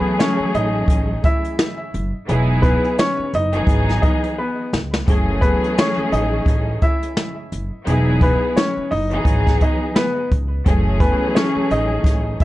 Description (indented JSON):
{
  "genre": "hip hop, boom-bap hip-hop",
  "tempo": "86 BPM",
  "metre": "4/4",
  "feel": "swing 58% on 16ths",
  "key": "F# dorian",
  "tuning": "A4 = 440 Hz",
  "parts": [
    { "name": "bright upright piano", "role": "melody", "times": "0.0-12.4 s", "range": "B3 to E5", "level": "-22 LUFS", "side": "left 1 dB", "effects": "high-pass filter, low-pass filter, tape echo" },
    { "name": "warm symphonic string section", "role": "accompaniment", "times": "0.0-12.4 s", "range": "E3 to G#4", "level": "-22 LUFS", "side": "equal", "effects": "high-pass filter, low-pass filter" },
    { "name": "jazz brush drum kit", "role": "drums", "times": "0.2-12.4 s", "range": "hi-hat, kick drum, snare drum", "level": "-18 LUFS", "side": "equal", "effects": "none" },
    { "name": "upright bass", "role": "bass", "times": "0.4-12.3 s", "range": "E1 to C#2", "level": "-22 LUFS", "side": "equal", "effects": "tube saturation" }
  ],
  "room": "little or no reverb",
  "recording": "dry, gritty hardware recording, nothing above 10.9 kHz",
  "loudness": "-16 LUFS",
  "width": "side -16 dB against mid",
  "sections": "0.0-12.4 A section",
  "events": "drum fill 4.4-5.1",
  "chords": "0.0 F#m9; 2.3 Emaj9; 5.1 F#m9; 7.9 Emaj9; 10.7 F#m9"
}